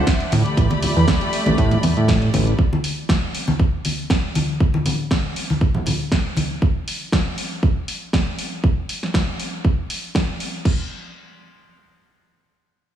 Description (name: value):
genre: nu-disco, nu disco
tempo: 119 BPM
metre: 4/4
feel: swing 53% on 16ths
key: unclear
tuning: A4 = 440 Hz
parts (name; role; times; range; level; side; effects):
- clear studio string section; sustained chords; 0.0-2.6 s; A3 to B5; -25 LUFS; equal; sidechain pumping
- fat analog bass; bass; 0.0-2.5 s; A1 to A2; -17 LUFS; right 1 dB; none
- electronic kick drum; drums; 0.1-10.8 s; none; -19 LUFS; right 1 dB; none
- house drum kit; drums; 0.1-10.8 s; crash cymbal, hi-hat, snare drum; -25 LUFS; right 1 dB; none
- congas and bongos; percussion; 0.3-6.5 s; none; -23 LUFS; left 1 dB; none
room: moderate echo chamber reverb, RT60 2.4 s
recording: heavily compressed radio sound, studio reverb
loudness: -18 LUFS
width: side -10 dB against mid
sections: 0.0-10.7 A section; 10.7-13.0 B section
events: none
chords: 0.3 A9sus4; 2.6 N.C.